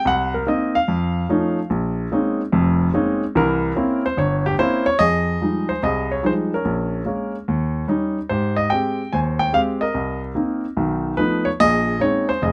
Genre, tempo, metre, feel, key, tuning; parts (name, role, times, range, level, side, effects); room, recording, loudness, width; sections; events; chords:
solo jazz; 146 BPM; 4/4; swing 67% on 8ths; F minor; A4 = 438 Hz
warm baby grand piano; solo; 0.0-12.5 s; F1 to Ab5; -20 LUFS; equal
light reverb; close, detailed microphones; -21 LUFS; mono
0.0-5.0 A section; 5.0-12.5 B section
grand piano solo 0.0-5.0
0.0 Cm7b5; 0.9 Faug7; 1.7 Bbm11; 3.3 C7b9; 5.0 Fm9; 6.6 Bbm7; 7.5 Eb7; 8.3 Abmaj7; 9.9 Cm7; 10.8 B7#11; 11.6 Bbm11